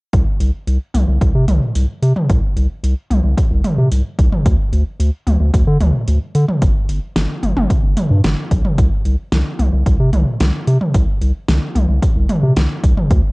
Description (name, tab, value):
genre	synth-pop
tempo	111 BPM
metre	4/4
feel	straight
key	unclear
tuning	A4 = 441 Hz
part	round analog bass	bass	0.1-13.2 s	G1 to D3	-14 LUFS	equal	none
part	deep house drum kit	drums	0.1-13.2 s	hi-hat, kick drum, snare drum, toms	-16 LUFS	equal	cassette tape
room	light reverb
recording	home recording on cassette, nothing above 10.4 kHz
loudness	-13 LUFS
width	side -27 dB against mid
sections	0.1-8.8 A section; 8.8-13.3 B section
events	none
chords	none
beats	| 0.13 0.67 1.21 1.75 | 2.29 2.84 3.38 3.92 | 4.46 5.00 5.54 6.08 | 6.62 7.16 7.70 8.24 | 8.78 9.32 9.86 10.40 | 10.94 11.48 12.03 12.57 | 13.11